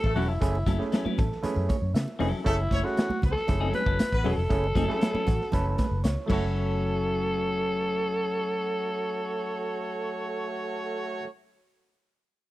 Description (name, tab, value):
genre	funk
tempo	117 BPM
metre	4/4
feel	straight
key	F# minor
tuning	A4 = 440 Hz
part	growling alto saxophone	melody	0.0-11.2 s	E4 to B4	-30 LUFS	equal	none
part	warm horn section	second line	0.0-11.2 s	A3 to C#5	-34 LUFS	right 1 dB	none
part	vintage muted fingered electric bass	bass	0.0-11.2 s	E1 to C#3	-29 LUFS	equal	none
part	raw garage drum kit	drums	0.0-6.4 s	crash cymbal, hi-hat, kick drum, snare drum	-29 LUFS	equal	none
part	congas	percussion	0.0-6.8 s	none	-36 LUFS	right 5 dB	none
part	clean electric guitar	accompaniment	0.2-11.3 s	F#3 to B4	-33 LUFS	left 4 dB	spring reverb
part	overdriven clav	stabs	0.2-11.3 s	A3 to E5	-33 LUFS	right 3 dB	auto-wah
room	little or no reverb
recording	dry, close 1970s-style studio recording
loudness	-25 LUFS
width	side -16 dB against mid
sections	0.0-6.6 A section; 6.6-10.7 B section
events	clav fill 0.9-2.5, 5.0-6.6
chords	0.0 F#m7